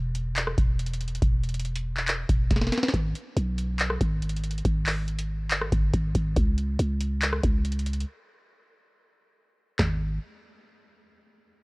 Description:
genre	hip hop, trap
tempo	140 BPM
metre	4/4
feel	half-time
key	G# harmonic minor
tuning	A4 = 439 Hz
part	growling 808-style bass	bass	0.0-10.2 s	E1 to C#2	-27 LUFS	equal	none
part	booming analog drum machine	drums	0.2-9.9 s	handclaps, hi-hat, kick drum, rim click, snare drum, toms	-26 LUFS	equal	none
room	digital ambience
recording	worn, warbling old tape, cassette tape, warbly pitch drift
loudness	-24 LUFS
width	side -28 dB against mid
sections	0.0-9.8 A section; 9.8-11.5 B section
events	drum fill 2.5-2.9; break 8.1-9.8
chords	none

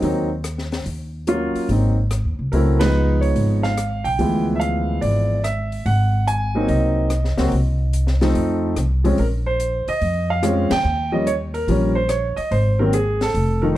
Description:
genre	jazz piano trio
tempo	144 BPM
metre	4/4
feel	swing 67% on 8ths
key	Ab mixolydian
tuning	A4 = 440 Hz
part	warm grand piano	melody	0.0-13.8 s	Eb3 to Ab5	-20 LUFS	right 1 dB	none
part	upright bass	bass	0.0-13.8 s	F1 to F2	-20 LUFS	equal	none
part	open jazz drum kit	drums	0.0-13.5 s	hi-hat, ride cymbal, rim click, snare drum	-30 LUFS	left 3 dB	none
room	light reverb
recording	dark, warm production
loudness	-17 LUFS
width	side -14 dB against mid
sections	0.0-13.8 A section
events	band accent 2.7, 10.6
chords	0.0 Ab7 (rootless); 1.7 Ab7; 2.5 Db7; 4.2 Ddim7; 5.9 Ab7; 7.5 Cm; 8.4 F7; 9.2 Bb5; 10.8 Eb7; 12.5 Ab

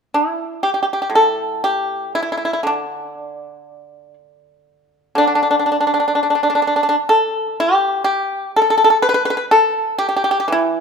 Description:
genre	chinese traditional, Chinese solo plucked strings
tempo	61 BPM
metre	4/4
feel	rubato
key	D zhi mode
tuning	A4 = 440 Hz
part	pipa	solo	0.1-10.8 s	A2 to B4	-15 LUFS	equal	none
room	moderate recital hall reverb, RT60 1.7 s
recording	minimal, uncompressed stereo recording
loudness	-15 LUFS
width	side -6 dB against mid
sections	0.0-1.1 A section; 1.1-10.8 B section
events	none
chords	none

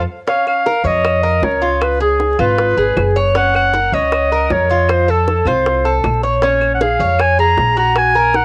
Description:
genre	latin, Cuban son and guajira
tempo	156 BPM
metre	4/4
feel	straight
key	Bb minor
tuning	A4 = 441 Hz
part	upright bass	bass	0.0-8.4 s	Gb1 to F2	-21 LUFS	equal	none
part	clear clarinet	melody	0.3-8.4 s	Ab4 to Bb5	-17 LUFS	equal	cassette tape, plate reverb
part	Cuban tres	arpeggios	0.3-8.4 s	Db4 to Db5	-21 LUFS	equal	cassette tape, plate reverb
part	bongos	percussion	0.3-8.4 s	none	-24 LUFS	equal	none
part	claves	percussion	0.5-8.2 s	none	-31 LUFS	equal	none
room	light reverb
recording	home recording on cassette, vinyl crackle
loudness	-15 LUFS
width	mono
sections	0.3-8.4 A section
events	band accent 0.0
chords	0.3 Bbm; 1.8 Db7; 3.4 Gb6; 4.9 F; 6.4 Bbm7

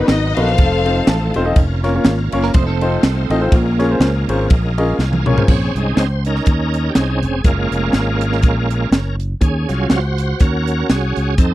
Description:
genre	uptempo gospel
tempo	122 BPM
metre	4/4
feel	swing 56% on 8ths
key	Bb minor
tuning	A4 = 440 Hz
part	warm symphonic string section	melody	0.0-1.3 s	D#4 to F5	-19 LUFS	left 4 dB	none
part	warm baby grand piano	accompaniment	0.0-5.5 s	Bb2 to A5	-19 LUFS	left 1 dB	none
part	bright tonewheel organ	sustained chords	0.0-11.5 s	F3 to Bb5	-22 LUFS	right 2 dB	slow rotary speaker, chorus vibrato
part	fingered electric bass	bass	0.1-11.5 s	E1 to F2	-18 LUFS	equal	none
part	crisp fusion drum kit	drums	0.1-11.5 s	crash cymbal, hi-hat, kick drum, ride cymbal, snare drum, toms	-15 LUFS	equal	none
part	clean electric guitar	second line	2.4-3.4 s	C4 to C5	-24 LUFS	right 9 dB	analog chorus
room	little or no reverb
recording	dry, close 1970s-style studio recording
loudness	-14 LUFS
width	side -16 dB against mid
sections	0.0-5.5 A section; 5.5-11.5 B section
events	grand piano fill 0.8-1.6; tonewheel organ fill 4.0-5.5; drum fill 5.0-5.5; tonewheel organ solo 5.5-11.5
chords	0.0 Bmaj7; 0.6 F7; 1.6 Bbm/F; 2.5 F7; 3.5 Bbm7; 5.5 Bbm11; 7.4 Gbmaj9; 9.4 Ebm7

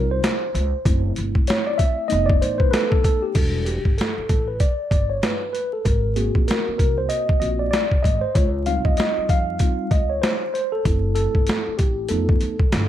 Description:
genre	hip hop, jazz-hop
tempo	96 BPM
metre	4/4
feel	swing 60% on 16ths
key	unclear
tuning	A4 = 440 Hz
part	mellow tine electric piano	accompaniment	0.0-12.9 s	G3 to E#5	-23 LUFS	equal	medium stereo tremolo
part	upright bass	bass	0.0-12.9 s	E1 to E#2	-25 LUFS	equal	none
part	boom bap sampler-style drum kit	drums	0.2-12.9 s	crash cymbal, hi-hat, kick drum, snare drum	-20 LUFS	equal	none
room	light reverb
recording	vinyl crackle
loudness	-18 LUFS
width	side -12 dB against mid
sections	0.0-3.4 A section; 3.4-12.9 B section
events	tine electric piano solo 0.0-3.4, 3.4-12.9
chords	0.0 C#maj9#11; 0.9 F#m7b5; 2.1 F7#11; 3.4 Em9; 5.9 G#9; 8.4 C#maj9#11; 10.9 F#m7b5; 12.1 F7#11

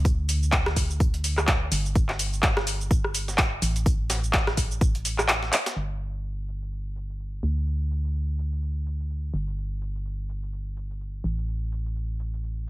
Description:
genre	piano house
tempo	126 BPM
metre	4/4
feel	swing 57% on 16ths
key	unclear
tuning	A4 = 440 Hz
part	organ-like FM bass	bass	0.0-12.7 s	G1 to D2	-28 LUFS	equal	sidechain pumping
part	breakbeat sampler-style drum kit	drums	0.1-5.8 s	hi-hat, snare drum, tambourine	-34 LUFS	equal	sidechain pumping on perc, high-pass filter on perc, sidechain pumping on hats, high-pass filter on hats, high-pass filter on snare
part	electronic kick drum	drums	0.1-4.9 s	none	-23 LUFS	equal	none
part	house drum kit	drums	0.1-12.7 s	handclaps, hi-hat, rim click, shaker	-25 LUFS	equal	low-pass filter on hats, low-pass filter on snare, low-pass filter on perc
room	digital ambience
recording	none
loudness	-24 LUFS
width	side -18 dB against mid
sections	0.0-5.8 A section; 5.8-12.7 B section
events	kick drops out 5.3-5.8; drum fill 5.5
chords	none

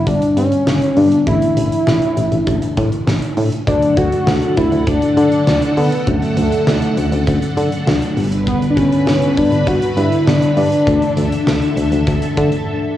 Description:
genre	synth-pop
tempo	100 BPM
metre	4/4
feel	straight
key	D major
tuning	A4 = 440 Hz
part	octave-doubled lead	melody	0.0-11.7 s	A3 to F#4	-16 LUFS	equal	chorus, cassette tape, analog delay
part	FM electric piano with soft pad layer	accompaniment	0.0-13.0 s	D3 to D4	-23 LUFS	left 2 dB	chorus, cassette tape
part	solid FM bass	bass	0.0-12.5 s	G1 to D3	-17 LUFS	equal	none
part	huge arena drum kit	drums	0.1-12.7 s	hi-hat, kick drum, snare drum	-21 LUFS	equal	cassette tape
part	string machine, violins	sustained chords	3.7-13.0 s	D3 to F#5	-22 LUFS	equal	ensemble chorus, cassette tape
room	moderate studio ambience, RT60 0.5 s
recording	home recording on cassette, small room reverb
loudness	-13 LUFS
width	side -12 dB against mid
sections	0.0-13.0 A section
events	break 12.7-13.0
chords	0.0 G; 1.3 Asus4; 3.7 D; 8.2 G; 10.9 Dsus2

